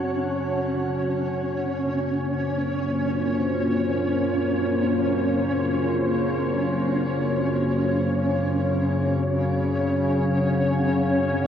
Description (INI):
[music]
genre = dark ambient drone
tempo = free time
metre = none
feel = none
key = unclear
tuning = A4 = 441 Hz
[part]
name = deep dark ambient pad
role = sustained chords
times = 0.0-11.5 s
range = A#3 to A5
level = -27 LUFS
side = equal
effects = chorus, built-in reverb, shimmer reverb
[part]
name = analog drone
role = drone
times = 0.0-11.5 s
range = F#2 to C#3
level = -25 LUFS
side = left 1 dB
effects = chorus
[part]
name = flickering grainy texture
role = texture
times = 0.0-11.5 s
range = C#4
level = -26 LUFS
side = equal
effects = built-in reverb, shimmer reverb
[sound]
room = wet cathedral reverb, RT60 5.8 s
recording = worn, warbling old tape, cassette tape, warbly pitch drift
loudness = -21 LUFS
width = side -9 dB against mid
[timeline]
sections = 0.0-11.5 A section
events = fade-in on synth drone 0.0-11.5; fade-out on ambient pad 0.0-11.5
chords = 0.0 F#m; 0.8 A#m; 8.3 F#5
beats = free time